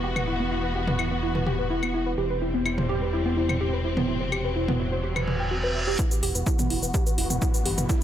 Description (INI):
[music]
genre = melodic techno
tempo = 126 BPM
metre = 4/4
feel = straight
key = E minor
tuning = A4 = 441 Hz
[part]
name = rich studio string section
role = sustained chords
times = 0.0-8.0 s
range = C3 to F#4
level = -31 LUFS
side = left 2 dB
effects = sidechain pumping, low-pass filter
[part]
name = woody wave-folded pluck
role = arpeggios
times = 0.0-8.0 s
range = B3 to G5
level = -28 LUFS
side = right 1 dB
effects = wide subtle chorus, sidechain pumping, dub echo
[part]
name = fat analog bass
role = bass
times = 0.0-7.9 s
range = E1 to G1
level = -30 LUFS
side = equal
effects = tube saturation, sidechain pumping
[part]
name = house drum kit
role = drums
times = 0.2-8.0 s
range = claves, hi-hat, shaker, toms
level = -30 LUFS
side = equal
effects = overdrive
[part]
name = reverse cymbal and riser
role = sound effects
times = 5.2-8.0 s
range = none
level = -34 LUFS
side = right 1 dB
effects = none
[part]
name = electronic kick drum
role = drums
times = 6.0-8.0 s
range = none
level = -24 LUFS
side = equal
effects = none
[sound]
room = light reverb, digital ambience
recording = none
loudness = -23 LUFS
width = side -10 dB against mid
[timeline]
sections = 0.0-6.0 A section; 6.0-8.0 B section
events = reverse cymbal 5.2-6.0; build-up 6.0-8.0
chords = 0.0 Esus2; 2.2 C/E; 6.0 Emadd9